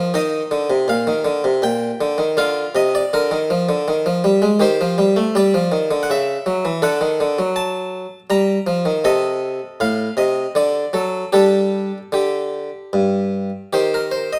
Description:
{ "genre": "classical, baroque-style suite movement for harpsichord", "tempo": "80 BPM", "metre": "3/4", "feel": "rubato", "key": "G minor from 4.6 s", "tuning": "A4 = 440 Hz", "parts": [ { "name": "harpsichord", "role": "solo", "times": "0.0-14.4 s", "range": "G2 to Bb5", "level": "-19 LUFS", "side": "equal", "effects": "none" } ], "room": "moderate stone room reverb, RT60 1.2 s", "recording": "none", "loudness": "-19 LUFS", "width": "mono", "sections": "0.0-13.7 A section", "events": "none", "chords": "0.1 Eb; 2.4 Bb; 3.9 Eb; 4.6 Cm/Eb; 6.1 C#madd11; 6.8 D; 8.3 Gm; 9.0 Adim/C; 10.6 D; 11.3 G5; 13.7 Cm/Eb", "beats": "| 0.14 0.89 1.64 | 2.38 3.13 3.88 | 4.62 5.35 6.09 | 6.83 7.57 8.30 | 9.04 9.80 10.56 | 11.35 12.14 12.94 | 13.73" }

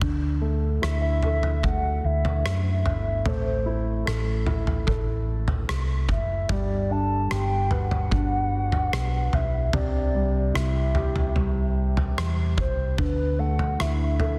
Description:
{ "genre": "pop ballad", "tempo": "74 BPM", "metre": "4/4", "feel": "straight", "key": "G major", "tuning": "A4 = 440 Hz", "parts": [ { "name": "warm upright piano", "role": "accompaniment", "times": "0.0-14.4 s", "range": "C3 to B4", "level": "-33 LUFS", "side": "equal", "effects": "none" }, { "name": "hollow-body short-scale fingered electric bass", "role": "bass", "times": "0.0-14.4 s", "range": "G1 to F#2", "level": "-28 LUFS", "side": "equal", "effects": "none" }, { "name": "loose indie drum kit", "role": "drums", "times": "0.0-14.4 s", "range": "kick drum, rim click, toms", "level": "-30 LUFS", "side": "equal", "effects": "soft clipping on snare" }, { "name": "hollow clarinet-like synth lead", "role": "melody", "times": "0.8-14.4 s", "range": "B4 to A5", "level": "-32 LUFS", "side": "equal", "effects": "chorus" } ], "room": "light reverb, small room ambience", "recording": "dense, heavily limited modern master", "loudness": "-25 LUFS", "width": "mono", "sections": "0.0-14.4 A section", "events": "none", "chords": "0.0 Dsus2; 3.3 Am; 6.5 G; 9.7 C; 13.0 Dsus2", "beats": "| 0.01 0.82 1.64 2.45 | 3.26 4.07 4.88 5.69 | 6.50 7.31 8.12 8.93 | 9.74 10.55 11.37 12.18 | 12.99 13.80" }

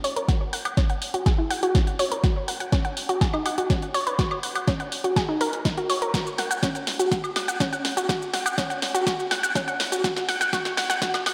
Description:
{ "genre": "progressive house", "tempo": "123 BPM", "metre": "4/4", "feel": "straight", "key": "unclear", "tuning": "A4 = 439 Hz", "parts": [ { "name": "analog pluck", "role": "arpeggios", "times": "0.0-11.3 s", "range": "C#4 to F#5", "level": "-28 LUFS", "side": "equal", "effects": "chorus, sidechain pumping, tape echo" }, { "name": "deep house drum kit", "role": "drums", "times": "0.0-11.3 s", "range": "hi-hat, shaker, snare drum, woodblock", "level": "-32 LUFS", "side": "equal", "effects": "overdrive, high-pass filter on perc, high-pass filter on snare, high-pass filter on hats, high-pass filter on room" }, { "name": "electronic kick drum", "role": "drums", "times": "0.3-11.1 s", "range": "none", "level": "-26 LUFS", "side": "equal", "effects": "overdrive" } ], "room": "wet lush hall reverb, RT60 1.8 s, digital ambience", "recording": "dreamy mix soaked in reverb, high-pass filter", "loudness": "-24 LUFS", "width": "mono", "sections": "0.0-11.3 A section", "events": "build-up 0.0-11.3; drum fill 0.0-11.3; filter sweep on synth arpeggio sound 0.0-11.3; filter sweep 0.0-11.3", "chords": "none", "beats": "| 0.29 0.77 1.26 1.75 | 2.24 2.73 3.21 3.70 | 4.19 4.68 5.16 5.65 | 6.14 6.63 7.12 7.60 | 8.09 8.58 9.07 9.55 | 10.04 10.53 11.02" }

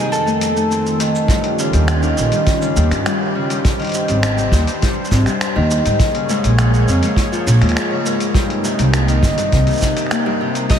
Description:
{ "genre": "folktronica", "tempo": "102 BPM", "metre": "4/4", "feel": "straight", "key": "unclear", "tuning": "A4 = 439 Hz", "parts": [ { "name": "bowl-back mandolin", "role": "melody", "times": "0.0-1.0, 10.7-10.8 s", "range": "Ab4 to Eb5", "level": "-23 LUFS", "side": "left 1 dB", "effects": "ping-pong delay" }, { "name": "warm analog pad", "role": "sustained chords", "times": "0.0-10.8 s", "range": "F2 to G5", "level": "-23 LUFS", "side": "right 1 dB", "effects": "chorus, tremolo" }, { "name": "Celtic harp", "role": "arpeggios", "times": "0.0-10.8 s", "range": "G2 to C4", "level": "-19 LUFS", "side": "left 2 dB", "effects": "ping-pong delay" }, { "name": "lo-fi sampler-style drum kit", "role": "drums", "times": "0.1-10.8 s", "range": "finger snaps, hi-hat, shaker", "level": "-24 LUFS", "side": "right 1 dB", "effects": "none" }, { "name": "kick drum", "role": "drums", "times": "1.3-10.8 s", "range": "none", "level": "-17 LUFS", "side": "equal", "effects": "none" }, { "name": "upright bass", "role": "bass", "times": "1.7-9.6 s", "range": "G1 to Ab2", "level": "-15 LUFS", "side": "right 1 dB", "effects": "none" } ], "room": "moderate huge ambient reverb, RT60 4.7 s", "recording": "dreamy mix soaked in reverb", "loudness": "-14 LUFS", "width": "side -8 dB against mid", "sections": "0.0-1.3 A section; 1.3-10.8 B section", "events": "none", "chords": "0.1 F7; 1.3 Eb9; 3.6 Abmaj7; 6.0 Bbm7; 8.4 Cm7", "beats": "0.12 0.70 | 1.29 1.88 2.47 3.06 | 3.65 4.23 4.82 5.41 | 6.00 6.59 7.17 7.76 | 8.35 8.94 9.53 10.12 | 10.70" }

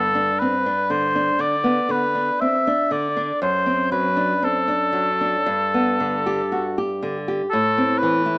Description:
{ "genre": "romantic duo for oboe and classical guitar", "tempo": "60 BPM", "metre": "4/4", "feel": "rubato", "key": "G major", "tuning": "A4 = 440 Hz", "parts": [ { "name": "warm oboe", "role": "melody", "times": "0.0-8.4 s", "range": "A4 to E5", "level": "-20 LUFS", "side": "equal", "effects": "none" }, { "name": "nylon-string guitar", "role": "accompaniment", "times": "0.0-8.4 s", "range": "F#2 to G4", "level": "-22 LUFS", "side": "equal", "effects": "none" } ], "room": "moderate studio ambience, RT60 0.5 s", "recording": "small speaker sound", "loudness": "-18 LUFS", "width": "side -33 dB against mid", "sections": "0.0-8.4 A section", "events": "none", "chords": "0.0 G; 3.4 D7/F#; 5.5 G; 7.5 Am", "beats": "0.39 1.39 2.40 | 3.41 4.42 5.46 6.49 | 7.49" }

